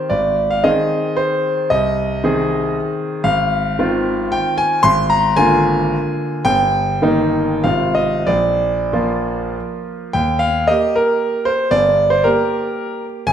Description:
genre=classical, romantic triple-time dance for piano with dotted rhythms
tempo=90-126 BPM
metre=3/4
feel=rubato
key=Eb major from 3.3 s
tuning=A4 = 440 Hz
part: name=clear concert grand piano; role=solo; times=0.0-13.3 s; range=F1 to C6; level=-15 LUFS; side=equal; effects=none
room=wet recital hall reverb, RT60 1.6 s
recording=minimal, uncompressed stereo recording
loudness=-14 LUFS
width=side -9 dB against mid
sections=0.0-10.1 A section; 10.1-13.3 B section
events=none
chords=0.1 Ab; 1.7 Ab/C; 3.3 Fm7/Ab; 4.8 Bb7/Ab; 6.5 Eb/G; 7.6 Fm/Ab; 8.3 Bb; 10.1 Eb; 11.7 Gm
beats=| 0.11 0.65 1.19 | 1.72 2.24 2.76 | 3.26 3.80 4.34 | 4.84 5.38 5.93 | 6.46 7.03 7.65 | 8.27 8.92 9.55 | 10.14 10.68 11.21 | 11.72 12.24 12.79 | 13.28

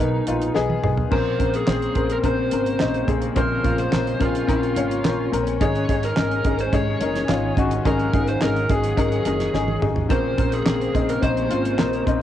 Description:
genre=piano-driven pop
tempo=107 BPM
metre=4/4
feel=straight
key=unclear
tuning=A4 = 440 Hz
part: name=lead guitar through a small cranked amp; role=melody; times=0.0-12.0 s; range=Eb4 to Db5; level=-26 LUFS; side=right 3 dB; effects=overdrive, cassette tape
part: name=clear upright piano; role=accompaniment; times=0.0-12.2 s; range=Ab2 to Db5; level=-23 LUFS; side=left 6 dB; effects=cassette tape
part: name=upright bass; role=bass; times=0.0-12.2 s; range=Gb1 to Cb2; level=-26 LUFS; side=right 3 dB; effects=none
part: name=damped 70s drum kit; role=drums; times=0.3-12.2 s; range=crash cymbal, handclaps, hi-hat, kick drum, snare drum, toms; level=-24 LUFS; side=right 2 dB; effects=cassette tape
part: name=warm studio string section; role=sustained chords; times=1.1-12.2 s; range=Db3 to Db4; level=-30 LUFS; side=right 1 dB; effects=cassette tape
room=moderate booth ambience, RT60 0.2 s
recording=home recording on cassette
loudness=-19 LUFS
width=side -11 dB against mid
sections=0.0-1.1 A section; 1.1-12.2 B section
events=drum fill 0.6-1.1, 9.5-10.1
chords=0.0 Abm; 1.1 Bbmadd9; 5.6 Absus4; 10.1 Bbmadd9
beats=0.56 | 1.12 1.68 2.24 2.80 | 3.36 3.93 4.49 5.05 | 5.61 6.17 6.73 7.29 | 7.86 8.42 8.98 9.54 | 10.10 10.67 11.23 11.79

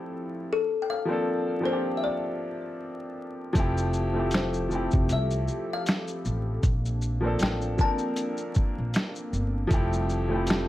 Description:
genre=lo-fi hip hop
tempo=78 BPM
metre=4/4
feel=swing 56% on 16ths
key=unclear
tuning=A4 = 440 Hz
part: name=bright upright piano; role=accompaniment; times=0.0-10.7 s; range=F3 to Bb4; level=-30 LUFS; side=equal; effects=cassette tape, low-pass filter
part: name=hollow soft pad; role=sustained chords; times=0.0-10.7 s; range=F3 to A4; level=-37 LUFS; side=equal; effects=chorus, low-pass filter
part: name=kalimba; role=melody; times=0.5-9.3 s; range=A4 to A5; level=-31 LUFS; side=left 5 dB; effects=low-pass filter, analog delay
part: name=upright bass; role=bass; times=3.6-10.7 s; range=F1 to C2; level=-28 LUFS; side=equal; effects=none
part: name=lo-fi sampler-style drum kit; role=drums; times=3.6-10.7 s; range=finger snaps, hi-hat, kick drum, shaker, snare drum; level=-26 LUFS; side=equal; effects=none
room=moderate studio reverb, RT60 0.7 s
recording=vinyl crackle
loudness=-25 LUFS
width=side -14 dB against mid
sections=0.0-10.7 A section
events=none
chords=0.5 Bbmaj9; 3.6 Fmaj9; 6.6 Bbmaj9; 9.7 Fmaj9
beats=| 0.48 1.25 2.02 2.79 | 3.56 4.33 5.09 5.87 | 6.63 7.40 8.17 8.94 | 9.71 10.48

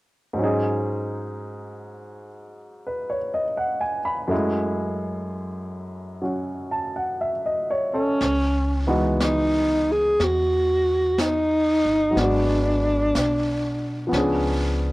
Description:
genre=jazz ballad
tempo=61 BPM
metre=4/4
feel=swing 69% on 8ths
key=C# minor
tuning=A4 = 440 Hz
part: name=warm baby grand piano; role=accompaniment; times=0.3-14.9 s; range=F#2 to B5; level=-25 LUFS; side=equal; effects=none
part: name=warm alto saxophone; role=melody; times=7.9-14.1 s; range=C#4 to G#4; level=-21 LUFS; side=equal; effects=cassette tape
part: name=upright bass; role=bass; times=8.2-14.9 s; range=G1 to E2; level=-26 LUFS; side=equal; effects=none
part: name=jazz brush drum kit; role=drums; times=8.2-14.9 s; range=brushed snare drum, hi-hat, snare drum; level=-32 LUFS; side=equal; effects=cassette tape
room=light reverb, small room reverb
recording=home recording on cassette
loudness=-20 LUFS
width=side -19 dB against mid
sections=0.4-8.2 A section; 8.2-14.9 B section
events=none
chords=0.4 G#7sus4; 4.3 F#m7; 8.2 C#m11; 12.2 G#m7b5; 14.1 C#7b9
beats=| 0.37 1.36 2.35 3.33 | 4.31 5.28 6.25 7.23 | 8.22 9.21 10.20 11.18 | 12.16 13.14 14.12

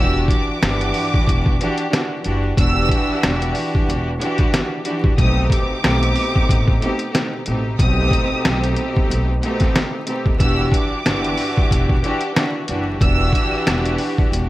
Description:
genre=hip hop, boom-bap hip-hop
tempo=92 BPM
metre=4/4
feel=swing 57% on 16ths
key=E minor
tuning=A4 = 440 Hz
part: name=rich studio violin section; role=melody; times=0.0-13.8 s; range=D6 to E6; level=-25 LUFS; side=right 1 dB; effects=high-pass filter, low-pass filter, ping-pong delay
part: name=clear studio string section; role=accompaniment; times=0.0-14.5 s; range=B2 to G4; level=-21 LUFS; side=equal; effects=cassette tape, high-pass filter, low-pass filter
part: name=upright bass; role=bass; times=0.0-14.5 s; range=E1 to D#2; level=-21 LUFS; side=equal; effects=none
part: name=trip hop sampler-style drum kit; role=drums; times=0.3-14.5 s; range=hi-hat, kick drum, rim click, snare drum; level=-18 LUFS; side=equal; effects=none
room=light reverb, small room ambience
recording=vinyl crackle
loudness=-16 LUFS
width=side -16 dB against mid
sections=0.0-14.5 A section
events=none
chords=0.0 Em9; 5.2 B7b9b13; 10.4 Em9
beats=0.62 1.27 1.92 | 2.58 3.23 3.88 4.53 | 5.18 5.84 6.49 7.14 | 7.79 8.45 9.10 9.75 | 10.40 11.05 11.71 12.36 | 13.01 13.66 14.31

